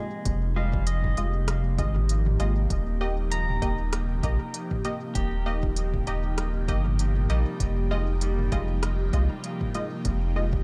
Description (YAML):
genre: ambient dub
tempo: 98 BPM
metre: 4/4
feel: swing 56% on 16ths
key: F minor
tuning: A4 = 437 Hz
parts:
  - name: airy breathy pad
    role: sustained chords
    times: 0.0-10.6 s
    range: C3 to G4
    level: -36 LUFS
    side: equal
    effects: chorus, phaser, vintage 12-bit sampler grit
  - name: pedal steel guitar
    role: arpeggios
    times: 0.0-10.6 s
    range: G3 to Bb5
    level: -40 LUFS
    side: equal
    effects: dub echo
  - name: filtered dub chord stab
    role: stabs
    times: 0.0-10.5 s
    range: Ab3 to Eb5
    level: -37 LUFS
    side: equal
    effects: chorus, cassette tape, dub echo
  - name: warm sub bass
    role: bass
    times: 0.3-10.6 s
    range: Eb1 to C2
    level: -28 LUFS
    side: equal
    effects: tube saturation
  - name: electronic kick drum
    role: drums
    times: 0.3-10.6 s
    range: none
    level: -33 LUFS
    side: equal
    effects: none
  - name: organic electronic drum kit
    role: drums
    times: 0.3-10.2 s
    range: hi-hat, rim click, toms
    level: -38 LUFS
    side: equal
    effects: dub echo
room: light reverb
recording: none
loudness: -26 LUFS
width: mono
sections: 0.0-10.6 A section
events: none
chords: 0.0 Fm7; 2.7 Eb; 7.6 Fm7